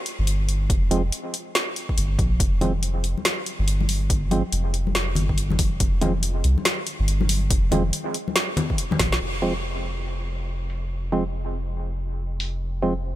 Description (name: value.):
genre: deep dubstep.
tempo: 141 BPM.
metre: 4/4.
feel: swing 62% on 16ths, half-time.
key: F minor.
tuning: A4 = 441 Hz.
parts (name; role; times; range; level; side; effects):
deep house drum kit; drums; 0.1-12.5 s; hi-hat, snare drum; -26 LUFS; equal; low-pass filter on hats, low-pass filter on snare, low-pass filter on room.
soft dub sub bass; bass; 0.2-13.2 s; F1 to C2; -24 LUFS; equal; none.
electronic kick drum; drums; 0.7-9.1 s; none; -23 LUFS; equal; none.
percussive organ stab; stabs; 0.9-12.9 s; F3 to C4; -29 LUFS; right 2 dB; chorus, dub echo.
congas; percussion; 2.6-9.0 s; none; -29 LUFS; left 3 dB; none.
room: little or no reverb.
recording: none.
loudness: -21 LUFS.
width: side -14 dB against mid.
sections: 0.0-9.2 A section; 9.2-13.2 B section.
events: drum fill 9.0; band accent 9.1; filter sweep on drum 9.2-13.2.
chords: 0.0 Fm.